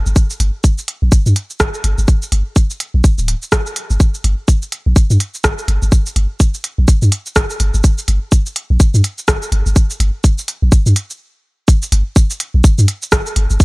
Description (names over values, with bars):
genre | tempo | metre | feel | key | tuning
minimal techno | 125 BPM | 4/4 | swing 59% on 16ths | G minor | A4 = 440 Hz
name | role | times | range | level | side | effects
punchy sub bass | bass | 0.0-13.6 s | D1 to G2 | -13 LUFS | equal | sidechain pumping
minimal click drum kit | drums | 0.1-13.6 s | hi-hat, rim click, shaker | -19 LUFS | right 1 dB | none
electronic kick drum | drums | 0.2-13.6 s | none | -11 LUFS | equal | none
room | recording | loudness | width
little or no reverb | dry, gritty hardware recording | -12 LUFS | side -26 dB against mid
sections
0.0-11.7 A section; 11.7-13.6 B section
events
stop 11.2-11.7; drop 11.7-13.6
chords
none